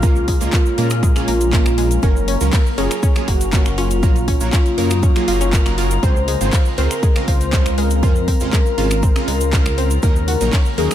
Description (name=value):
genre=progressive house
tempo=120 BPM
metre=4/4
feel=straight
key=unclear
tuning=A4 = 440 Hz
part: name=warm velvety synth lead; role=melody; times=0.0-10.9 s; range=F4 to C5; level=-23 LUFS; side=left 1 dB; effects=chorus, sidechain pumping, analog delay
part: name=glassy wavetable pluck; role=second line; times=0.0-10.9 s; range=F4 to C5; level=-31 LUFS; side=left 1 dB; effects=none
part: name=evolving wavetable pad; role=sustained chords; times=0.0-10.9 s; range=Db3 to F5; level=-27 LUFS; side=left 1 dB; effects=phaser, built-in reverb, sidechain pumping
part: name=analog pluck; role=arpeggios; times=0.0-10.8 s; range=Ab3 to Gb4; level=-28 LUFS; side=equal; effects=chorus, sidechain pumping, analog delay
part: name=supersaw stab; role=stabs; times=0.0-10.9 s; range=Bb2 to C5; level=-26 LUFS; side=right 4 dB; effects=lush chorus, cassette tape, sidechain pumping, analog delay
part: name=dark detuned saw bass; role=bass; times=0.0-10.9 s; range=Gb1 to Bb2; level=-20 LUFS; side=equal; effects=tube saturation, sidechain pumping
part: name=electronic kick drum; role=drums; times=0.0-10.6 s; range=none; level=-15 LUFS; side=equal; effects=overdrive, studio reverb
part: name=house drum kit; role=drums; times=0.0-10.9 s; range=finger snaps, handclaps, hi-hat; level=-26 LUFS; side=left 2 dB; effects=overdrive, sidechain pumping on hats, studio reverb
part: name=warm soul drum kit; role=drums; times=0.0-10.9 s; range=hi-hat, shaker, snare drum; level=-41 LUFS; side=right 4 dB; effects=none
part: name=cabasa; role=percussion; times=0.0-10.9 s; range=none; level=-32 LUFS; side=right 3 dB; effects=none
part: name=drifting glass-harmonics texture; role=texture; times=0.0-10.9 s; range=Bb4 to Bb5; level=-34 LUFS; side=left 3 dB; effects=chorus, built-in reverb, sidechain pumping
room=studio reverb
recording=none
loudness=-14 LUFS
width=side -11 dB against mid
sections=0.0-10.9 A section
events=none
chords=0.0 Bbm7; 2.0 Gbmaj7; 6.0 Dbmaj7; 10.0 Ebm7